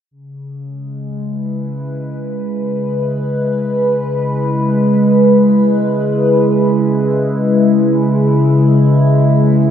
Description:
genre	ambient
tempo	free time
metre	none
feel	none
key	C# minor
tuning	A4 = 440 Hz
part	phased analog pad	sustained chords	0.1-9.7 s	C#3 to B4	-12 LUFS	equal	phaser, chorus
room	wet lush hall reverb, RT60 2.5 s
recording	dreamy mix soaked in reverb, nothing above 7.6 kHz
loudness	-11 LUFS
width	side -9 dB against mid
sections	0.1-9.7 A section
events	none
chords	0.1 C#m7

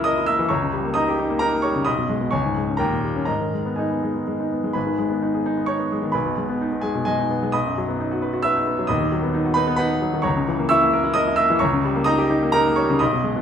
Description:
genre	classical, virtuoso piano study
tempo	130 BPM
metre	3/4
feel	rubato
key	G# minor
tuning	A4 = 440 Hz
part	clear baby grand piano	solo	0.0-13.4 s	D#1 to E6	-19 LUFS	equal	none
room	wet recital hall reverb, RT60 1.6 s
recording	minimal, uncompressed stereo recording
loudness	-19 LUFS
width	side -8 dB against mid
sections	0.0-4.8 A section; 4.8-13.4 A section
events	none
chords	0.0 A#dim/C#; 0.5 D#7/C#; 1.9 G#m/B; 2.3 C#5; 2.8 D#7; 3.3 G#m; 6.1 G#m/B; 7.5 B; 8.9 B/D#; 10.2 A#dim/C#; 11.6 D#7/C#

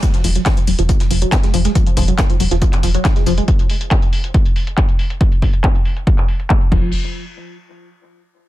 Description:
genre	driving peak-time techno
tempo	139 BPM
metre	4/4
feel	straight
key	F phrygian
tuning	A4 = 441 Hz
part	tight sequenced synth	riff	0.0-3.4, 6.7-6.9 s	Eb3 to Ab3	-21 LUFS	equal	chorus, tube saturation, sidechain pumping, dub echo
part	breakbeat sampler-style drum kit	drums	0.0-3.4 s	hi-hat, snare drum, tambourine	-32 LUFS	left 2 dB	high-pass filter on snare, sidechain pumping on perc, high-pass filter on perc, sidechain pumping on hats, high-pass filter on hats
part	electronic kick drum	drums	0.0-6.8 s	none	-14 LUFS	equal	none
part	techno drum kit	drums	0.0-6.8 s	crash cymbal, handclaps, hi-hat	-24 LUFS	left 1 dB	sidechain pumping on hats, low-pass filter on hats, low-pass filter on snare, sidechain pumping on toms, low-pass filter on toms, sidechain pumping on cymbals, low-pass filter on cymbals, low-pass filter on room
part	tight sequencer bass	bass	0.2-3.4, 6.7-6.9 s	F1	-17 LUFS	equal	sidechain pumping
room	digital ambience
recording	dense, heavily limited modern master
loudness	-13 LUFS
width	side -15 dB against mid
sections	0.0-6.9 A section; 6.9-8.5 B section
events	filter sweep on drum 0.0-6.9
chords	none

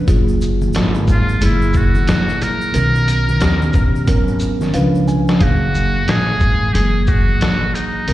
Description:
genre	hip hop, jazz-hop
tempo	90 BPM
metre	4/4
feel	swing 61% on 16ths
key	F# major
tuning	A4 = 441 Hz
part	mellow tine electric piano	accompaniment	0.0-8.1 s	D#3 to G#5	-20 LUFS	right 1 dB	slow stereo tremolo, slapback echo
part	upright bass	bass	0.0-8.1 s	F#1 to D#2	-17 LUFS	equal	none
part	trip hop sampler-style drum kit	drums	0.1-8.1 s	hi-hat, kick drum, shaker, snare drum	-18 LUFS	equal	none
part	tube shaker and congas	percussion	0.1-5.4 s	none	-29 LUFS	left 1 dB	none
part	trumpet with metal mute	melody	1.1-8.1 s	D#4 to A#4	-21 LUFS	equal	slapback echo, analog delay
room	little or no reverb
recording	live gig heard through the venue's PA, recital hall reverb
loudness	-13 LUFS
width	side -15 dB against mid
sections	0.0-5.4 A section; 5.4-8.1 A section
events	tine electric piano fill 4.4-5.4; drum fill 4.7-5.4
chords	0.1 F#maj9; 1.4 F#9; 2.7 Bmaj9; 3.4 D#7b13; 4.1 G#m11; 4.7 C#7b9; 5.4 F#maj9; 6.7 F#9

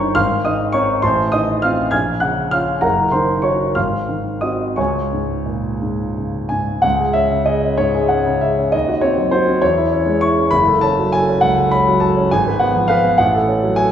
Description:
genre	classical, romantic character piece for solo piano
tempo	56-70 BPM (dotted quarters)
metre	6/8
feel	rubato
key	Db major, C# minor from 6.8 s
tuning	A4 = 440 Hz
part	warm concert grand piano	solo	0.0-13.9 s	Gb1 to Ab6	-14 LUFS	equal	none
room	wet recital hall reverb, RT60 1.4 s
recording	recorded in a church or concert hall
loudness	-14 LUFS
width	side -9 dB against mid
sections	0.0-6.8 A section; 6.8-13.9 B section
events	none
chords	0.2 Ab; 1.1 F7/A; 1.9 Bbm; 2.8 Ebm7/Gb; 3.8 Ab7; 4.8 Db5; 6.8 C#5; 8.7 Cdim/Eb; 9.6 C#m/E; 10.5 F#m; 12.3 Fdim/Ab; 13.2 F#m/A

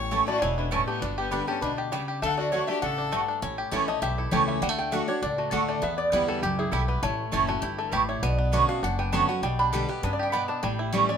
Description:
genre	bluegrass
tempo	200 BPM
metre	4/4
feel	straight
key	unclear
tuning	A4 = 440 Hz
part	bluegrass banjo	melody	0.0-11.2 s	E3 to G4	-31 LUFS	left 2 dB	none
part	lap resonator guitar	melody	0.0-11.2 s	F#4 to B5	-30 LUFS	equal	none
part	bright fiddle	second line	0.0-3.3 s	B3 to C#5	-33 LUFS	left 5 dB	none
part	picked steel-string acoustic guitar	accompaniment	0.0-11.2 s	E2 to G4	-30 LUFS	left 1 dB	none
part	upright bass	bass	0.0-11.0 s	E1 to G2	-32 LUFS	equal	none
part	mandolin	stabs	0.1-11.0 s	A3 to B5	-27 LUFS	right 6 dB	none
room	moderate studio reverb, RT60 0.8 s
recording	minimal, uncompressed stereo recording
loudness	-24 LUFS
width	side -7 dB against mid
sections	0.0-3.4 A section; 3.4-11.2 B section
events	none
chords	0.0 A; 1.0 G; 2.2 D; 3.4 A; 4.6 D; 5.8 Em; 7.0 A; 8.2 Bmadd9; 9.4 G/B; 10.6 A7

